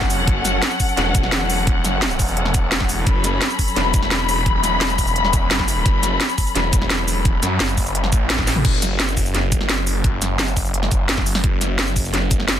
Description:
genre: dark technical drum and bass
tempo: 172 BPM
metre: 4/4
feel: straight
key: F# minor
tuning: A4 = 441 Hz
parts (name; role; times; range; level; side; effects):
- muted studio string section; sustained chords; 0.0-8.6 s; F#3 to B5; -22 LUFS; left 4 dB; sidechain pumping
- snarling distorted saw bass; bass; 0.0-12.6 s; E1 to F#2; -21 LUFS; equal; distortion, overdrive
- drum and bass drum kit; drums; 0.0-12.6 s; crash cymbal, hi-hat, shaker, snare drum, toms; -21 LUFS; equal; none
- electronic kick drum; drums; 0.0-12.4 s; none; -20 LUFS; equal; none
room: little or no reverb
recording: dense, heavily limited modern master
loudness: -16 LUFS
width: side -10 dB against mid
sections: 0.0-8.6 A section; 8.6-12.6 A section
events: drop 0.0-8.6, 8.6-12.6; band accent 8.3; drum fill 8.5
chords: 0.0 F#m; 8.6 N.C.

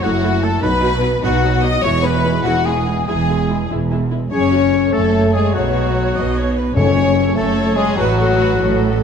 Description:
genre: cinematic, heroic adventure film score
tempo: 99 BPM (dotted quarters)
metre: 6/8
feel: straight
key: F# dorian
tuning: A4 = 440 Hz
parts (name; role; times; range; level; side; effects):
- warm studio violin section; melody; 0.0-9.0 s; F#4 to D#5; -28 LUFS; left 3 dB; none
- clear chamber violin section; second line; 0.0-9.0 s; F#4 to D#5; -24 LUFS; left 5 dB; none
- clear oboe; second line; 0.0-9.0 s; F#4 to D#5; -26 LUFS; equal; none
- concert flute; second line; 0.0-3.7 s; F#5 to D#6; -26 LUFS; left 2 dB; none
- warm symphonic viola section; accompaniment; 0.0-9.0 s; F#3 to D#5; -24 LUFS; right 3 dB; none
- warm French horn section; sustained chords; 0.0-9.0 s; F#3 to E4; -19 LUFS; left 5 dB; none
- rich studio double bass section; bass; 0.0-9.0 s; E1 to B1; -20 LUFS; right 3 dB; none
- rich symphonic cello section; bass; 0.0-9.0 s; E2 to B2; -22 LUFS; right 3 dB; none
- warm clarinet; second line; 4.3-9.0 s; F#4 to C#5; -26 LUFS; left 4 dB; none
- timpani; percussion; 6.8-7.3 s; F#2; -24 LUFS; left 1 dB; none
room: wet scoring stage reverb, RT60 2.1 s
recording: dark, warm production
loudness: -14 LUFS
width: side -7 dB against mid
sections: 0.0-4.3 A section; 4.3-9.0 B section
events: none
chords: 0.0 F#m7; 0.6 B; 1.8 E; 4.3 F#m; 5.5 Bsus2; 6.8 F#m; 8.0 F#madd11/A

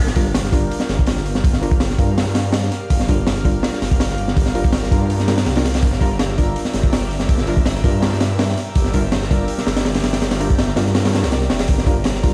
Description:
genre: drum and bass, jungle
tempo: 164 BPM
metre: 4/4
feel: straight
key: G dorian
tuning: A4 = 441 Hz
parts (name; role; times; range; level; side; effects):
- airy breathy pad; sustained chords; 0.3-12.3 s; G4 to F5; -31 LUFS; equal; chorus, phaser
- detuned saw bass; bass; 0.0-12.3 s; F1 to G2; -24 LUFS; equal; none
- crunchy breakbeat drum kit; drums; 0.1-12.3 s; hi-hat, kick drum, snare drum; -20 LUFS; equal; none
- deep mellow chord stab; stabs; 0.2-12.3 s; G3 to Bb4; -27 LUFS; equal; chorus, dub echo
room: light reverb, small room ambience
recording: played on a big sound system in a bare room, stone room reverb, vinyl crackle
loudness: -18 LUFS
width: mono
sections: 0.0-12.3 A section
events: none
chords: 0.0 Gm7

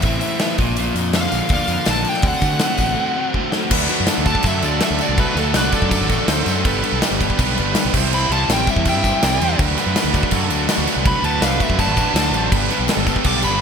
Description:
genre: indie rock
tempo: 164 BPM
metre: 4/4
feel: straight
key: unclear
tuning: A4 = 442 Hz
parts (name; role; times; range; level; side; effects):
- smooth overdriven lead guitar; melody; 0.0-13.6 s; A4 to D6; -23 LUFS; equal; ping-pong delay
- biting overdriven guitar; riff; 0.0-13.6 s; G2 to G4; -24 LUFS; right 8 dB; analog chorus, ping-pong delay
- overdriven electric guitar; riff; 0.0-13.6 s; G2 to F#4; -24 LUFS; left 11 dB; none
- fuzz fingered electric bass; bass; 0.0-13.6 s; G1 to D3; -23 LUFS; equal; overdrive
- big rock drum kit; drums; 0.0-13.5 s; crash cymbal, hi-hat, kick drum, snare drum; -20 LUFS; equal; gated reverb
- tambourine; percussion; 0.8-13.5 s; none; -33 LUFS; left 14 dB; none
- clear trumpet; second line; 3.7-13.5 s; A4 to E5; -27 LUFS; right 6 dB; none
room: moderate lush hall reverb, RT60 2.1 s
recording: bright 1980s-style digital production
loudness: -15 LUFS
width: side -6 dB against mid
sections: 0.0-3.7 A section; 3.7-13.6 B section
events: break 3.0-3.7; drum fill 3.4-3.7; lead electric guitar solo 3.7-13.6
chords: 0.0 Amadd9; 0.6 Bb; 2.2 D7; 6.7 G; 7.9 C; 9.6 D; 12.5 G

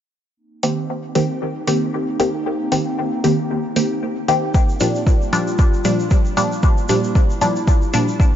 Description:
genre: dub techno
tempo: 115 BPM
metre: 4/4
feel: swing 56% on 16ths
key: C minor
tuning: A4 = 438 Hz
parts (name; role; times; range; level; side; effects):
- warbly tape-like pad; sustained chords; 0.9-8.4 s; G3 to F4; -26 LUFS; equal; chorus, built-in reverb, sidechain pumping
- filtered dub chord stab; stabs; 0.6-8.1 s; Bb2 to G4; -19 LUFS; equal; chorus, phaser, sidechain pumping, dub echo
- electronic hi-hat; drums; 0.6-8.1 s; none; -28 LUFS; right 1 dB; overdrive, studio reverb
- electronic kick drum; drums; 4.5-8.3 s; none; -15 LUFS; equal; overdrive, studio reverb
- egg shaker; percussion; 4.5-8.3 s; none; -34 LUFS; right 3 dB; none
room: light reverb, digital ambience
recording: nothing above 7.5 kHz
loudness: -16 LUFS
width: side -10 dB against mid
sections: 0.4-8.4 A section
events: filter sweep on synth stab 0.4-8.4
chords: 0.4 Cm7; 4.5 Gm7

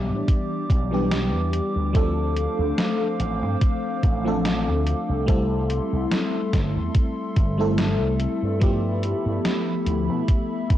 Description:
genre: vaporwave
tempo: 72 BPM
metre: 4/4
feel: swing 55% on 16ths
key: D dorian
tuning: A4 = 441 Hz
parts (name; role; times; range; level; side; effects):
- FM electric piano with soft pad layer; accompaniment; 0.0-10.8 s; E3 to A4; -25 LUFS; left 1 dB; phaser, wide subtle chorus, tape echo
- warbly tape-like pad; sustained chords; 0.0-10.8 s; G4 to D6; -33 LUFS; right 2 dB; chorus, built-in reverb
- slap bass with an envelope filter; bass; 0.0-10.8 s; G1 to B2; -25 LUFS; equal; tube saturation
- electronic kick drum; drums; 0.3-10.8 s; none; -20 LUFS; equal; overdrive
- gated 80s digital drum machine; drums; 0.3-10.8 s; hi-hat, snare drum; -28 LUFS; equal; gated reverb, gated reverb snare, overdrive
room: digital ambience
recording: dry, gritty hardware recording, transformer saturation, cassette tape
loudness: -20 LUFS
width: side -12 dB against mid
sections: 0.0-10.8 A section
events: none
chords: 0.0 Em7; 1.9 Dm7; 5.3 C6; 8.6 G13

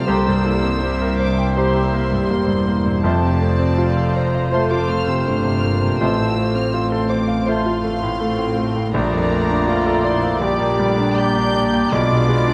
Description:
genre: classical, romantic movement for piano and orchestra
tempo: 81 BPM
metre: 4/4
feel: rubato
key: F major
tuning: A4 = 440 Hz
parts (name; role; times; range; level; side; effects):
- clear concert grand piano; melody; 0.0-12.5 s; A1 to G5; -23 LUFS; equal; none
- warm studio violin section; melody; 0.0-12.5 s; A5 to G6; -33 LUFS; equal; none
- dark studio violin section; second line; 0.0-12.5 s; E4 to F5; -31 LUFS; equal; none
- warm studio viola section; accompaniment; 0.0-12.5 s; F3 to G4; -29 LUFS; equal; none
- mellow French horn section; sustained chords; 0.0-12.5 s; G3 to G4; -31 LUFS; equal; none
- clear trumpet; stabs; 0.0-12.5 s; C5 to D5; -30 LUFS; equal; none
- dark studio cello section; bass; 0.0-12.5 s; C2 to B2; -28 LUFS; equal; none
- warm studio double bass section; bass; 0.0-12.5 s; E1 to C2; -28 LUFS; equal; none
- clear clarinet; second line; 0.1-12.5 s; F4 to G4; -30 LUFS; equal; none
- clear oboe; second line; 0.1-12.5 s; C5 to D5; -32 LUFS; equal; none
- mellow hollow small flute group; second line; 0.1-12.5 s; A5 to B5; -32 LUFS; equal; none
- mellow bassoon; accompaniment; 0.1-12.5 s; G3 to C4; -32 LUFS; equal; none
room: light reverb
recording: close, detailed microphones, vinyl crackle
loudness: -18 LUFS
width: mono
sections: 0.0-12.5 A section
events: none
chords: 0.1 C7; 3.0 F; 6.0 F/A; 8.9 Bbmaj7; 10.4 Gm/Bb; 11.9 Bdim7

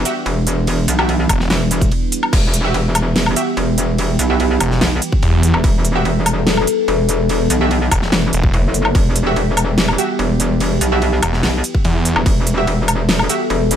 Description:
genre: heavy wobble dubstep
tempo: 145 BPM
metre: 4/4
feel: half-time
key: E minor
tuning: A4 = 440 Hz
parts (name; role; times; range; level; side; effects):
- evolving wavetable pad; sustained chords; 0.0-13.8 s; E3 to A4; -21 LUFS; equal; phaser, built-in reverb, sidechain pumping
- metallic wobble bass; bass; 0.0-13.8 s; E1 to B1; -17 LUFS; equal; distortion, chorus, overdrive
- orchestra-hit-like synth stab; stabs; 0.1-13.4 s; F#4 to E5; -23 LUFS; right 2 dB; built-in reverb, ping-pong delay
- big-room dance drum kit; drums; 0.1-13.8 s; crash cymbal, hi-hat, ride cymbal, snare drum, woodblock; -20 LUFS; equal; none
- snarling distorted saw bass; bass; 1.3-1.5, 4.6-8.5, 11.2-12.1 s; E1 to E2; -17 LUFS; equal; distortion, overdrive
- electronic kick drum; drums; 1.3-2.4, 5.1-9.0, 11.7-12.3 s; none; -17 LUFS; equal; none
room: little or no reverb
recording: none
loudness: -13 LUFS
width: side -9 dB against mid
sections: 0.0-13.8 A section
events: break 1.9-2.3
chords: 0.0 Emadd9

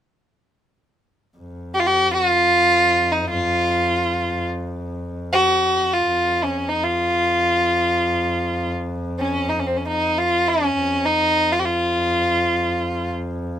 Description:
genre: Arabic maqam ensemble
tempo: free time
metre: none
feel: none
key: unclear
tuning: A4 = 440 Hz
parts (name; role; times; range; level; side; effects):
- clear double bass; drone; 1.4-13.6 s; F2; -28 LUFS; equal; none
- rich violin; melody; 1.7-13.1 s; C4 to G4-46c; -18 LUFS; equal; none
room: light reverb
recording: minimal, uncompressed stereo recording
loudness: -17 LUFS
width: side -10 dB against mid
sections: 1.4-13.6 A section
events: none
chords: none

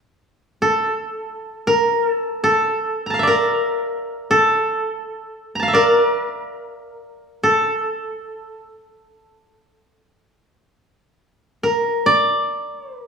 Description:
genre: japanese traditional, Japanese chamber music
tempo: free time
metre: none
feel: none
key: A miyako bushi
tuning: A4 = 442 Hz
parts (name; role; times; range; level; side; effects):
- koto; solo; 0.6-13.1 s; A4 to Bb5; -17 LUFS; equal; none
room: moderate recital hall reverb, RT60 1.4 s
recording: recorded in a church or concert hall, studio ambience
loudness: -17 LUFS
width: side -6 dB against mid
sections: 0.0-13.1 A section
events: none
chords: none

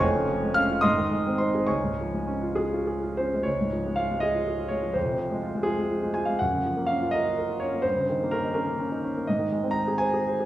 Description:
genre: classical, romantic character piece for solo piano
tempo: 65-86 BPM (dotted quarters)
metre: 6/8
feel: rubato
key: Db major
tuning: A4 = 439 Hz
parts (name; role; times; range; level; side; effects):
- clear concert grand piano; solo; 0.0-10.5 s; F1 to F6; -24 LUFS; equal; none
room: wet recital hall reverb, RT60 1.6 s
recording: heard from further back in the room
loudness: -24 LUFS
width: side -14 dB against mid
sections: 0.0-3.5 A section; 3.5-10.5 B section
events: none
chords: 0.0 Db/F; 0.8 Ab; 1.7 Db; 5.0 Fm; 6.4 Gbmaj7; 7.8 Eb7/G; 9.3 Ab

